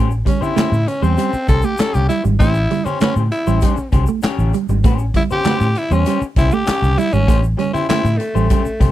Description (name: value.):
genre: funk.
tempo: 98 BPM.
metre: 4/4.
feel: straight.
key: A mixolydian.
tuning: A4 = 440 Hz.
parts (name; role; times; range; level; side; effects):
electric guitar through a small old amp; accompaniment; 0.0-8.9 s; C#4 to C#5; -24 LUFS; left 7 dB; none.
mellow electric guitar; riff; 0.0-8.7 s; G3 to A3; -21 LUFS; right 10 dB; wide subtle chorus.
vintage muted fingered electric bass; bass; 0.0-8.9 s; G#1 to A2; -17 LUFS; equal; none.
tube shaker; percussion; 0.1-8.9 s; none; -42 LUFS; left 5 dB; none.
growling tenor saxophone; melody; 0.3-8.9 s; A3 to A4; -20 LUFS; equal; none.
swinging big-band drum kit; drums; 0.3-8.9 s; handclaps, hi-hat, kick drum, snare drum; -19 LUFS; equal; none.
congas; percussion; 0.3-8.9 s; none; -29 LUFS; right 4 dB; none.
room: little or no reverb.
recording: dry, close 1970s-style studio recording.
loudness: -14 LUFS.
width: side -13 dB against mid.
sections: 0.0-8.9 A section.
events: none.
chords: 0.0 A7#9.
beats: 0.57 1.18 1.79 | 2.40 3.01 3.62 4.23 | 4.84 5.45 6.06 6.67 | 7.28 7.89 8.51.